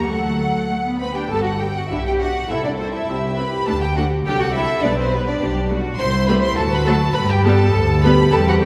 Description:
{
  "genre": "quick classical-period movement for string orchestra",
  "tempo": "102 BPM",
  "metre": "2/4",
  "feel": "rubato",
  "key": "G major",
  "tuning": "A4 = 441 Hz",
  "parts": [
    { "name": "dark studio violin section", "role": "melody", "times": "0.0-8.7 s", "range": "B4 to C6", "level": "-27 LUFS", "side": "equal", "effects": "none" },
    { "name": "dark chamber violin section", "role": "second line", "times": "0.0-8.7 s", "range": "B3 to F#5", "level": "-26 LUFS", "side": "equal", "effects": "none" },
    { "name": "warm studio viola section", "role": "accompaniment", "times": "0.0-8.7 s", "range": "F#3 to A4", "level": "-26 LUFS", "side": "equal", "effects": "none" },
    { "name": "dark studio double bass section", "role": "bass", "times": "0.0-8.7 s", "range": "G1 to G2", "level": "-23 LUFS", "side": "equal", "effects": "none" },
    { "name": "warm studio cello section", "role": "bass", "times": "0.0-8.7 s", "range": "F#3 to B4", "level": "-27 LUFS", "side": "equal", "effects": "none" }
  ],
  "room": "wet scoring stage reverb, RT60 1.9 s",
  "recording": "heard from further back in the room",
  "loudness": "-19 LUFS",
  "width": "mono",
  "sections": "0.0-1.3 A section; 1.3-8.7 B section",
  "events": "none",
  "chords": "0.1 D; 1.3 G; 1.9 G/B; 2.5 C; 3.7 D; 4.3 D7/C; 4.8 G/B; 6.0 Am7/C; 6.6 D; 7.2 G",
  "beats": "| 0.08 0.69 | 1.30 1.90 | 2.49 3.08 | 3.67 4.25 | 4.84 5.42 | 5.99 6.58 | 7.16 7.74 | 8.33"
}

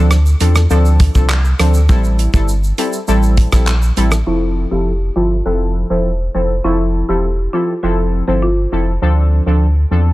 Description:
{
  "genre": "dancehall",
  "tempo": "101 BPM",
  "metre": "4/4",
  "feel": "straight",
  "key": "unclear",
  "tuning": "A4 = 440 Hz",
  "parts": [
    { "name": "synth brass stab", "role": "accompaniment", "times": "0.0-10.1 s", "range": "F3 to A4", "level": "-19 LUFS", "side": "equal", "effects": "chorus, sidechain pumping, low-pass filter" },
    { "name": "warm sub bass", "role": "bass", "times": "0.0-10.1 s", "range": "E1 to E2", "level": "-14 LUFS", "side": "equal", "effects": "none" },
    { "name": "damped 70s drum kit", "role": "drums", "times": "0.1-4.3 s", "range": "handclaps, hi-hat, kick drum, rim click, shaker", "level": "-16 LUFS", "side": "equal", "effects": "none" },
    { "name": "folk marimba with medium mallets", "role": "melody", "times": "4.3-8.8 s", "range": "E4 to C5", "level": "-20 LUFS", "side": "equal", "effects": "low-pass filter, tape echo" }
  ],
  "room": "small room reverb",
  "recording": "none",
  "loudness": "-12 LUFS",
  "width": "side -18 dB against mid",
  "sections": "0.0-4.3 A section; 4.3-10.1 B section",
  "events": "filter sweep 4.3-10.1",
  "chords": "0.0 Dm7; 1.9 Am7; 4.3 Fmaj7; 9.0 Dm7",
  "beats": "0.11 0.70 1.30 | 1.89 2.48 3.08 3.67 | 4.27 4.86 5.46 6.05 | 6.64 7.24 7.83 8.43 | 9.02 9.61"
}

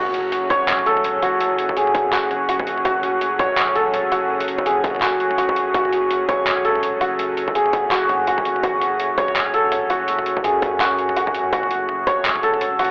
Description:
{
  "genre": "half-time drum and bass",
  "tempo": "166 BPM",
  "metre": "4/4",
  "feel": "swing 59% on 16ths, half-time",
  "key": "F# minor",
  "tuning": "A4 = 440 Hz",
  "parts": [
    { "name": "bowed-like drone", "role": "sustained chords", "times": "0.1-12.9 s", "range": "F#3 to G#4", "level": "-28 LUFS", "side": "equal", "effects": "built-in reverb, sidechain pumping" },
    { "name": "santur", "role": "arpeggios", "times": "0.0-12.9 s", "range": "F#4 to C#5", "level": "-18 LUFS", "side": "equal", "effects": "analog delay" },
    { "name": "long sustained 808-style bass", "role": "bass", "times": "0.0-12.9 s", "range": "E1 to F#2", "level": "-36 LUFS", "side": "equal", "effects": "tube saturation" },
    { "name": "boom bap sampler-style drum kit", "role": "drums", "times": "0.1-12.9 s", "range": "handclaps, hi-hat, toms", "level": "-24 LUFS", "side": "equal", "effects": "none" },
    { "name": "electronic kick drum", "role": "drums", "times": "0.5-12.2 s", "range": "none", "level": "-26 LUFS", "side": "equal", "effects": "distortion" }
  ],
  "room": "moderate small room reverb, RT60 0.5 s",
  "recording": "home recording on cassette, telephone sound",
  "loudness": "-17 LUFS",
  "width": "side -28 dB against mid",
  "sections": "0.0-12.9 A section",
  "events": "none",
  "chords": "0.0 F#m",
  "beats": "0.32 0.68 1.04 | 1.41 1.77 2.13 2.49 | 2.85 3.21 3.58 3.94 | 4.30 4.66 5.02 5.38 | 5.74 6.11 6.47 6.83 | 7.19 7.55 7.91 8.27 | 8.64 9.00 9.36 9.72 | 10.08 10.44 10.80 11.17 | 11.53 11.89 12.25 12.61"
}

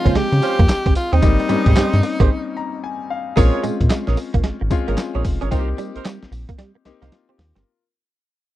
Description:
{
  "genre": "R&B, new jack swing",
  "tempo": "112 BPM",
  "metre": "4/4",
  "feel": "swing 63% on 16ths",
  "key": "Bb dorian",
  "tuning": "A4 = 441 Hz",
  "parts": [
    { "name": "bright tenor saxophone", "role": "melody", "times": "0.0-2.8 s", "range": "Eb4 to G4", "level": "-23 LUFS", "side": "equal", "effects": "slapback echo" },
    { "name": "clear concert grand piano", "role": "accompaniment", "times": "0.0-7.8 s", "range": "F3 to Bb5", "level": "-25 LUFS", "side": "left 7 dB", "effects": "none" },
    { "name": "direct-recorded clean electric guitar", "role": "riff", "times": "0.1-7.6 s", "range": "G3 to Db4", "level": "-24 LUFS", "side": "right 6 dB", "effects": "ensemble chorus" },
    { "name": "mellow horn section", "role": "stabs", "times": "0.1-7.1 s", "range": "Db4 to Db5", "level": "-26 LUFS", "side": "right 9 dB", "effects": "none" },
    { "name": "round analog bass", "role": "bass", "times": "0.1-7.6 s", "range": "F1 to Db3", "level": "-19 LUFS", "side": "equal", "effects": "none" },
    { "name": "dusty soul sampler-style drum kit", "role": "drums", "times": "0.1-7.7 s", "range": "handclaps, hi-hat, kick drum, snare drum, tambourine", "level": "-18 LUFS", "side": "equal", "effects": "none" }
  ],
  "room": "little or no reverb",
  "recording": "dry, close 1970s-style studio recording",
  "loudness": "-16 LUFS",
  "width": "side -14 dB against mid",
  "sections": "0.0-3.4 A section; 3.4-7.7 B section",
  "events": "break 2.3-3.4; grand piano fill 2.3-3.4; fade-out 3.4-7.7; drum fill 6.6-7.7",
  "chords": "0.0 Dbmaj7; 1.2 Abmaj7; 3.4 Bbm7; 5.5 Cm7",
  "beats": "0.15 0.69 | 1.23 1.76 2.30 2.83 | 3.37 3.90 4.44 4.98 | 5.51 6.05 6.58 7.12"
}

